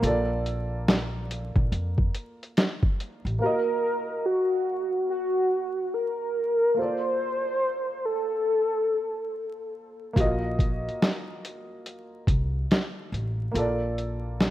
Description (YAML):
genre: lo-fi hip hop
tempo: 71 BPM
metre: 4/4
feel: swing 63% on 16ths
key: unclear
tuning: A4 = 441 Hz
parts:
  - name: dark upright piano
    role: accompaniment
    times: 0.0-14.5 s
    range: Bb3 to F5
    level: -31 LUFS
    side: right 1 dB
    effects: cassette tape
  - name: upright bass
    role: bass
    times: 0.0-3.4, 10.2-14.5 s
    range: A1 to F2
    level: -29 LUFS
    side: equal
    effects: none
  - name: lo-fi sampler-style drum kit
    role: drums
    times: 0.0-3.4, 10.2-14.5 s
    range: hi-hat, kick drum, snare drum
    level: -24 LUFS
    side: equal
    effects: vintage 12-bit sampler grit
  - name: warm velvety synth lead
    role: melody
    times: 3.4-9.7 s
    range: Gb4 to C5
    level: -25 LUFS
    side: equal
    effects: chorus, tape echo
room: light reverb, small room ambience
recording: rough home demo mix, vinyl crackle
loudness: -24 LUFS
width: side -13 dB against mid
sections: 0.0-3.4 A section; 3.4-14.5 B section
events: kick muted 13.5-14.5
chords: 0.0 Bbmaj7; 3.4 Ebmadd9/Bb; 6.8 Bbmaj7; 10.2 Ebmadd9/Bb; 13.5 Bbmaj7